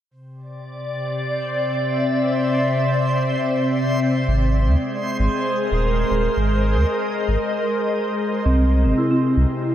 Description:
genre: IDM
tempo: 115 BPM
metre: 4/4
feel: straight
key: unclear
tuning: A4 = 440 Hz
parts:
  - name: glassy FM pad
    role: sustained chords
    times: 0.4-9.7 s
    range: C3 to E5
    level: -21 LUFS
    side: left 1 dB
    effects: ensemble chorus, built-in reverb, vintage 12-bit sampler grit
  - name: backwards swelling texture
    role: texture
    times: 1.2-8.5 s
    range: C5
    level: -28 LUFS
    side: right 1 dB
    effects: built-in reverb
  - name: warm sub bass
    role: bass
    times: 4.3-9.5 s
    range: Eb1 to Eb2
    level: -18 LUFS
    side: equal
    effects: tube saturation
  - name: vibraphone with medium mallets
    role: arpeggios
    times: 8.5-9.7 s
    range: C4 to E4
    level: -20 LUFS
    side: right 1 dB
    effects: low-pass filter, analog delay
room: moderate huge ambient reverb, RT60 7.7 s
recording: dreamy mix soaked in reverb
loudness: -18 LUFS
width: side -11 dB against mid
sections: 0.1-8.5 A section; 8.5-9.7 B section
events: break 7.4-8.5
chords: 0.1 Cadd9; 4.3 Absus2; 8.5 Cadd9

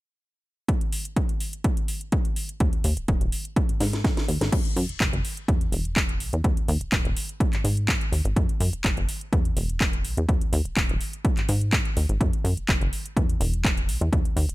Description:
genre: filtered disco house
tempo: 125 BPM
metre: 4/4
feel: straight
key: unclear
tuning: A4 = 440 Hz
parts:
  - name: electronic kick drum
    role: drums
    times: 0.7-14.2 s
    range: none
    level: -24 LUFS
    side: equal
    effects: overdrive
  - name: house drum kit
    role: drums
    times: 0.7-14.5 s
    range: crash cymbal, handclaps, hi-hat, snare drum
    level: -29 LUFS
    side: equal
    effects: overdrive, sidechain pumping on hats, sidechain pumping on cymbals
  - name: plucky analog bass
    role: bass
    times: 2.6-14.5 s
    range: D#1 to G#2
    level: -26 LUFS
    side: equal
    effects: sidechain pumping, low-pass filter
room: little or no reverb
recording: none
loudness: -22 LUFS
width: side -19 dB against mid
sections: 0.7-4.5 A section; 4.5-14.5 B section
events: drum fill 3.8-4.5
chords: none

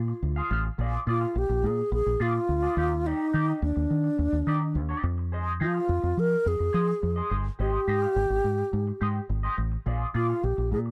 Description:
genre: disco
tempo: 106 BPM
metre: 4/4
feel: straight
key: unclear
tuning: A4 = 439 Hz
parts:
  - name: mellow alto flute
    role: melody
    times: 0.0-10.8 s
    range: D4 to Bb4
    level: -30 LUFS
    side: equal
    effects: none
  - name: deep dub fingered electric bass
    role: bass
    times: 0.0-10.9 s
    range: G1 to F3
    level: -30 LUFS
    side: equal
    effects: none
  - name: clean electric guitar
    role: accompaniment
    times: 0.1-10.9 s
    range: Eb4 to F5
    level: -35 LUFS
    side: equal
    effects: wah
room: small room ambience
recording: dry, close 1970s-style studio recording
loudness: -27 LUFS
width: mono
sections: 0.8-10.9 A section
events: none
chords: 0.0 Bb7; 2.8 Ebmaj7; 5.0 Fm7; 7.6 Abmaj7; 9.9 Bb7

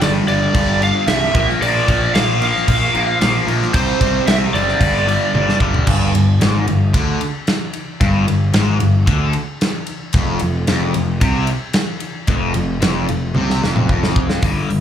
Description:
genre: hard rock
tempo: 112 BPM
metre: 4/4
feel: straight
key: G minor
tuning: A4 = 439 Hz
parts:
  - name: lead guitar through a small cranked amp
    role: melody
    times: 0.0-5.6 s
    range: C5 to F5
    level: -19 LUFS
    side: right 2 dB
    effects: overdrive, plate reverb, slapback echo, tape echo
  - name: cranked stack guitar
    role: riff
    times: 0.0-14.8 s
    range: F2 to C4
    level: -20 LUFS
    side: left 5 dB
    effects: overdrive, phaser, slapback echo
  - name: distorted electric guitar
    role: riff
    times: 0.0-14.4 s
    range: F2 to C4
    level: -24 LUFS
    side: right 11 dB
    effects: distortion, slapback echo
  - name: fuzz picked electric bass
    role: bass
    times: 0.0-14.8 s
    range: F1 to D2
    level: -20 LUFS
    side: equal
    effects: overdrive
  - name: big rock drum kit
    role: drums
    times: 0.0-14.8 s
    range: crash cymbal, hi-hat, kick drum, ride cymbal, snare drum, toms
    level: -19 LUFS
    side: equal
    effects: none
room: light reverb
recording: live gig heard through the venue's PA, club reverb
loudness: -14 LUFS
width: side -9 dB against mid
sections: 0.0-5.9 A section; 5.9-14.4 B section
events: drum fill 5.3-5.9, 13.4-14.4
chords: 0.0 G5; 1.4 Bb; 3.7 C5; 4.8 G5; 10.1 F5

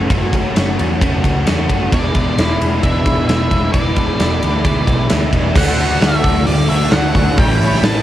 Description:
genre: rock, shoegaze and dream pop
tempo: 132 BPM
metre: 4/4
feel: straight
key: unclear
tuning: A4 = 442 Hz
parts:
  - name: overdriven electric guitar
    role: riff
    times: 0.0-8.0 s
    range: E2 to F#4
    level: -17 LUFS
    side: equal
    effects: ensemble chorus, cassette tape
  - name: vintage muted picked electric bass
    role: bass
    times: 0.0-8.0 s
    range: E1 to E2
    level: -19 LUFS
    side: equal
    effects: none
  - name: huge arena drum kit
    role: drums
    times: 0.1-7.9 s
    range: crash cymbal, hi-hat, kick drum, ride cymbal, snare drum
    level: -16 LUFS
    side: equal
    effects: cassette tape
  - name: octave-fuzz lead guitar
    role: melody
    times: 1.9-8.0 s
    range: D5 to A5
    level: -23 LUFS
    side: equal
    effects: distortion, cassette tape, tape echo
room: small room reverb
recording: home recording on cassette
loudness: -12 LUFS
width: side -13 dB against mid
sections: 0.0-5.6 A section; 5.6-8.0 B section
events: none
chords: 0.0 F#m7; 1.9 E7; 5.6 D; 7.4 A7

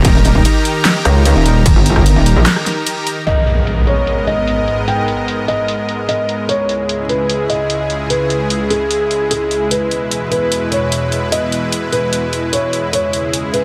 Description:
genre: heavy wobble dubstep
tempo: 149 BPM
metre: 4/4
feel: half-time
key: G# harmonic minor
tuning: A4 = 441 Hz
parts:
  - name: supersaw pad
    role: sustained chords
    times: 0.0-13.6 s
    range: C#2 to A#5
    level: -21 LUFS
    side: equal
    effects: sidechain pumping
  - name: metallic wobble bass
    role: bass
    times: 0.0-2.5 s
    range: D#1 to C#2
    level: -13 LUFS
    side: equal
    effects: chorus, overdrive
  - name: dubstep drum kit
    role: drums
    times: 0.0-13.6 s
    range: crash cymbal, handclaps, hi-hat, rim click, snare drum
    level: -22 LUFS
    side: equal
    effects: low-pass filter on snare, small room ambience, low-pass filter on hats, low-pass filter on cymbals
  - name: electronic kick drum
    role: drums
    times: 0.0-2.0 s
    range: none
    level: -15 LUFS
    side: equal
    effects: distortion, small room ambience
  - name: felt-muted upright piano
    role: melody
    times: 3.3-13.6 s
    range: G#4 to G5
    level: -20 LUFS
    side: equal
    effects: dub echo
  - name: impact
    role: sound effects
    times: 3.3-4.9 s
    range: none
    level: -20 LUFS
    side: equal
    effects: none
room: light reverb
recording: none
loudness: -15 LUFS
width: mono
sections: 0.0-3.3 A section; 3.3-13.6 B section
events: drop 0.0-3.3; break 2.5-3.3; impact 3.3-4.9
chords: 0.0 D#; 3.3 G#madd9; 6.5 C#m; 9.7 E; 12.9 C#m

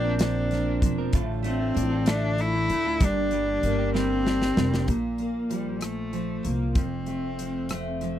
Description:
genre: six-eight pop ballad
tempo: 64 BPM (dotted quarters)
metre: 6/8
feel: straight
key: unclear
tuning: A4 = 439 Hz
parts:
  - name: rich cello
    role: melody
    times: 0.0-8.0 s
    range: G3 to E4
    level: -28 LUFS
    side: left 2 dB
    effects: none
  - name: picked steel-string acoustic guitar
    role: accompaniment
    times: 0.0-8.2 s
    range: F2 to D4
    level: -30 LUFS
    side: right 2 dB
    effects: double-tracked left and right
  - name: direct-recorded clean electric guitar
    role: arpeggios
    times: 0.0-4.9 s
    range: G2 to Bb4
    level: -34 LUFS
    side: right 9 dB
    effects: warbly pitch drift
  - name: upright bass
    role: bass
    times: 0.0-8.2 s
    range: E1 to D2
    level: -29 LUFS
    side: equal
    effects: none
  - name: modern studio drum kit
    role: drums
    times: 0.2-8.2 s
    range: hi-hat, kick drum, rim click, snare drum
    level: -26 LUFS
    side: equal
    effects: none
room: little or no reverb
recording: dry, close 1970s-style studio recording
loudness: -23 LUFS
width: side -11 dB against mid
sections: 0.0-4.9 A section; 4.9-8.2 B section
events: drum fill 3.9-4.9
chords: 0.0 Bbadd9; 1.1 Dm/A; 3.0 Gm; 4.9 Bb5; 6.8 F

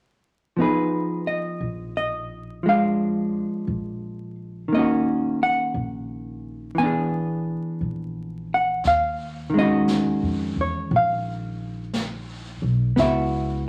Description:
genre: jazz ballad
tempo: 58 BPM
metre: 4/4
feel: swing 67% on 8ths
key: Eb minor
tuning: A4 = 438 Hz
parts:
  - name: hollow-body jazz guitar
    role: accompaniment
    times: 0.6-13.7 s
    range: Eb3 to G#5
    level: -24 LUFS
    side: equal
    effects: none
  - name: upright bass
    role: bass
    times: 1.6-13.7 s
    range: Bb1 to F2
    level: -32 LUFS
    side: equal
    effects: none
  - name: jazz brush drum kit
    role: drums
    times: 8.8-13.7 s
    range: brushed snare drum, hi-hat, snare drum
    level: -36 LUFS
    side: equal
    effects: none
room: wet large studio reverb, RT60 0.9 s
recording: vinyl crackle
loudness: -24 LUFS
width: mono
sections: 0.6-8.8 A section; 8.8-13.7 B section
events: none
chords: 0.6 Fm7b5; 2.6 Bb7; 4.7 Ebm7; 6.8 E7; 8.8 Ebm11; 13.0 Dbm11

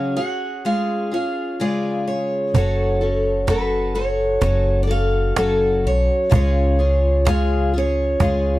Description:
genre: acoustic folk duo or small band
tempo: 64 BPM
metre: 4/4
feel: straight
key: F# harmonic minor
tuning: A4 = 439 Hz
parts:
  - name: picked steel-string acoustic guitar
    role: melody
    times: 0.0-8.6 s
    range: B4 to F#5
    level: -23 LUFS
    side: right 2 dB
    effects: none
  - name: picked twelve-string acoustic guitar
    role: accompaniment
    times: 0.0-8.6 s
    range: C#3 to A4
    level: -22 LUFS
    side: left 2 dB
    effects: none
  - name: upright bass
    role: bass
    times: 2.5-8.6 s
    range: F#1 to C#2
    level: -20 LUFS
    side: equal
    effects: none
  - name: cajon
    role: percussion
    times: 2.5-8.4 s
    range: none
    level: -18 LUFS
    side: right 2 dB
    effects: none
room: light reverb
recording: dry, close 1970s-style studio recording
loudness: -17 LUFS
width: side -17 dB against mid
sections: 0.0-2.5 A section; 2.5-8.6 A section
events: none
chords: 0.0 C#sus4; 0.7 C#; 2.5 F#m; 6.3 C#

